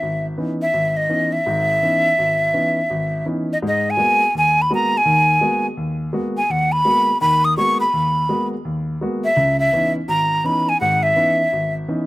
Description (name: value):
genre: jazz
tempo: 167 BPM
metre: 4/4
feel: swing 63% on 8ths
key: G# minor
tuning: A4 = 440 Hz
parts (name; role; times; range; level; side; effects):
- breathy bright jazz flute; melody; 0.0-11.7 s; D#5 to D#6; -16 LUFS; equal; none
- clear concert grand piano; accompaniment; 0.0-12.1 s; G#1 to F#4; -22 LUFS; equal; none
room: little or no reverb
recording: recorded outdoors, with no room sound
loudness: -16 LUFS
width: side -18 dB against mid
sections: 0.0-12.1 A section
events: none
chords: 0.0 C#m9; 3.6 G#m9; 9.4 C#m9